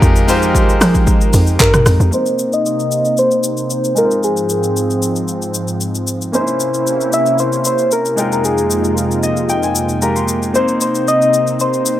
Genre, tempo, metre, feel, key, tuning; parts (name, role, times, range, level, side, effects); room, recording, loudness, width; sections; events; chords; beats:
amapiano; 114 BPM; 4/4; straight; C minor; A4 = 438 Hz
clear concert grand piano; accompaniment; 0.0-12.0 s; Ab3 to C6; -20 LUFS; left 1 dB; low-pass filter
warm analog pad; sustained chords; 0.0-12.0 s; F2 to Bb4; -19 LUFS; equal; chorus, low-pass filter
hollow log drum bass; bass; 0.0-2.1 s; F2 to F3; -14 LUFS; equal
deep house drum kit; drums; 0.0-12.0 s; handclaps, hi-hat, kick drum, rim click, shaker, toms; -17 LUFS; equal
soft struck synth lead; melody; 1.6-12.0 s; Ab4 to E5; -16 LUFS; equal; chorus, low-pass filter, digital delay
light reverb, digital ambience; -12 LUFS; side -12 dB against mid
0.0-2.1 A section; 2.1-12.0 B section
drop 0.0-2.1; filter sweep 2.1-12.0; grand piano fill 9.0-10.5
0.0 Fm11; 2.1 Cm7; 4.0 Ab6; 6.3 C7b9; 8.2 Fm11; 10.5 Cm7
| 0.02 0.55 1.07 1.60 | 2.13 2.65 3.18 3.71 | 4.23 4.76 5.29 5.81 | 6.34 6.86 7.39 7.92 | 8.44 8.97 9.50 10.02 | 10.55 11.07 11.60